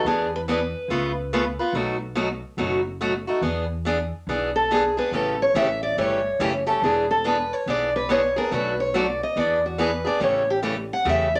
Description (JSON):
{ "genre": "acoustic string swing (jazz manouche)", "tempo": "142 BPM", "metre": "4/4", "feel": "swing 63% on 8ths", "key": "E mixolydian", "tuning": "A4 = 440 Hz", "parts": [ { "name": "picked steel-string acoustic guitar", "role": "melody", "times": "0.0-11.4 s", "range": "F#4 to F#5", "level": "-25 LUFS", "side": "equal", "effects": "none" }, { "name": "picked steel-string acoustic guitar", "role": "accompaniment", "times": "0.0-11.3 s", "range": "B2 to B4", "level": "-27 LUFS", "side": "equal", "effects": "none" }, { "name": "upright bass", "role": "bass", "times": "0.0-11.4 s", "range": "E1 to E2", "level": "-35 LUFS", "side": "equal", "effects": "none" } ], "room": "wet studio reverb, RT60 0.5 s", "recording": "none", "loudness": "-23 LUFS", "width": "mono", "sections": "0.0-3.4 A section; 3.4-11.4 B section", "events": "steel-string acoustic guitar solo 3.4-11.4", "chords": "0.0 E7; 0.9 C#aug7; 1.7 B7; 3.4 E7; 5.1 A7; 6.8 E7; 8.5 Bm7; 9.4 E7; 10.2 A7" }